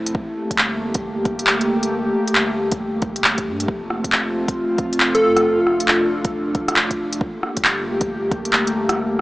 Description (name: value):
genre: future garage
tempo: 136 BPM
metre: 4/4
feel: swing 63% on 16ths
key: G minor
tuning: A4 = 440 Hz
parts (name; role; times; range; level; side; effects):
- airy breathy pad; sustained chords; 0.0-9.2 s; A3 to A4; -21 LUFS; equal; chorus, sidechain pumping
- soft dub sub bass; bass; 0.0-9.2 s; F1 to G2; -34 LUFS; equal; tube saturation, sidechain pumping
- electronic kick drum; drums; 0.1-8.4 s; none; -26 LUFS; equal; none
- organic electronic drum kit; drums; 0.1-9.0 s; handclaps, hi-hat, rim click; -19 LUFS; equal; none
- plucky unison lead; melody; 5.1-5.6 s; A4; -20 LUFS; equal; tape echo
room: moderate huge ambient reverb, RT60 4.3 s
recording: small speaker sound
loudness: -17 LUFS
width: side -18 dB against mid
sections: 0.0-9.2 A section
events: none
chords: 0.2 Gmadd9; 3.7 F; 7.2 Gmadd9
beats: | 0.15 0.59 1.03 1.48 | 1.92 2.36 2.80 3.24 | 3.68 4.12 4.57 5.01 | 5.45 5.89 6.33 6.77 | 7.21 7.65 8.09 8.54 | 8.98